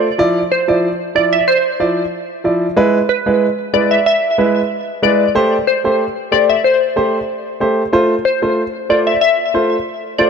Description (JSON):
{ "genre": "dancehall", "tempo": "93 BPM", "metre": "4/4", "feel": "straight", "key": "A minor", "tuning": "A4 = 442 Hz", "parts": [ { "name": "clear grand piano", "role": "accompaniment", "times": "0.0-10.3 s", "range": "F3 to D5", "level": "-15 LUFS", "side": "right 1 dB", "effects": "none" }, { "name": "glassy wavetable pluck", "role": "melody", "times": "0.5-10.3 s", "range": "B4 to E5", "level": "-15 LUFS", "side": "left 1 dB", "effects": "chorus, digital delay" } ], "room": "moderate lush hall reverb, RT60 2.9 s", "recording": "dark, warm production", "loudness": "-13 LUFS", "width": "side -6 dB against mid", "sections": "0.0-10.3 A section", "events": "none", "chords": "0.2 Dmadd9; 2.8 E; 5.3 Am7; 7.9 F" }